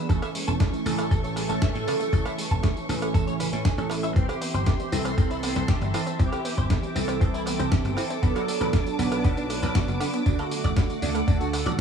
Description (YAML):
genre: nu-disco, nu disco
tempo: 118 BPM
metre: 4/4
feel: straight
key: unclear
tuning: A4 = 439 Hz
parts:
  - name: mellow synth brass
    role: accompaniment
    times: 0.0-11.8 s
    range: D3 to B4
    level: -29 LUFS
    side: right 3 dB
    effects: chorus, phaser, tape echo
  - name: clear symphonic string section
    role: sustained chords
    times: 0.0-11.8 s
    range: A3 to D6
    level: -37 LUFS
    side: left 2 dB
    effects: sidechain pumping
  - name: analog pluck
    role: arpeggios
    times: 0.0-11.8 s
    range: C#3 to F#4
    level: -35 LUFS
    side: equal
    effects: chorus, cassette tape, sidechain pumping, tape echo
  - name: direct-recorded clean electric guitar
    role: riff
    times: 0.1-11.8 s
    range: B2 to A5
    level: -35 LUFS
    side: left 1 dB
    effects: ensemble chorus, tape echo
  - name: dry thumbed slap bass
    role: bass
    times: 0.1-11.8 s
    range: E1 to A2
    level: -28 LUFS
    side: right 1 dB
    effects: none
  - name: dusty soul sampler-style drum kit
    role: drums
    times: 0.1-11.8 s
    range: hi-hat, snare drum, tambourine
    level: -34 LUFS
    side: right 1 dB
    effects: small room reverb
  - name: electronic kick drum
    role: drums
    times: 0.1-11.8 s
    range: none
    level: -23 LUFS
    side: equal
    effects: small room reverb
  - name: cowbell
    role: percussion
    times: 0.2-11.6 s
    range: none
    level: -37 LUFS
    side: right 7 dB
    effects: none
room: digital ambience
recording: none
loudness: -22 LUFS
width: side -7 dB against mid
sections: 0.0-11.8 A section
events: none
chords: 0.1 Amaj7; 4.2 Cmaj7; 8.2 Bm7; 10.3 Dmaj7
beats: | 0.09 0.60 1.11 1.62 | 2.13 2.63 3.14 3.65 | 4.16 4.67 5.18 5.69 | 6.20 6.70 7.21 7.72 | 8.23 8.74 9.25 9.75 | 10.26 10.77 11.28 11.79